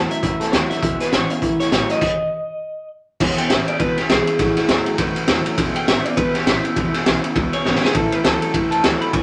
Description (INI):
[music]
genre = rockabilly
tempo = 202 BPM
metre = 4/4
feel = swing 60% on 8ths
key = E major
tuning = A4 = 440 Hz
[part]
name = picked steel-string acoustic guitar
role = accompaniment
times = 0.0-9.2 s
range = A2 to A4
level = -30 LUFS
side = equal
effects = none
[part]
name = electric guitar through a small old amp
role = riff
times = 0.0-9.2 s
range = E2 to F#3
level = -27 LUFS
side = equal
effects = none
[part]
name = upright bass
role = bass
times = 0.0-9.2 s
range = E1 to F#2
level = -34 LUFS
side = equal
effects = none
[part]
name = electric guitar through a small old amp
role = melody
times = 0.1-9.2 s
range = E4 to B5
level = -26 LUFS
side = equal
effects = none
[part]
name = raw garage drum kit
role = drums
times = 0.1-9.2 s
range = crash cymbal, hi-hat, kick drum, ride cymbal, snare drum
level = -21 LUFS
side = equal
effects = none
[sound]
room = moderate small room reverb, RT60 0.5 s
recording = none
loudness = -19 LUFS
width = mono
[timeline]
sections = 0.0-3.2 A section; 3.2-9.2 B section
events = stop 2.0-3.2; clean electric guitar solo 3.2-9.2; drum fill 7.7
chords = 0.0 A6; 0.8 E6; 1.4 A6; 2.0 N.C.; 3.2 E6; 4.4 A6; 5.6 E6; 8.0 A6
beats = 0.23 0.53 | 0.83 1.13 1.42 1.72 | 2.02 2.32 2.61 2.91 | 3.21 3.50 3.80 4.10 | 4.39 4.69 4.99 5.29 | 5.58 5.88 6.17 6.47 | 6.77 7.06 7.36 7.66 | 7.95 8.25 8.54 8.84 | 9.13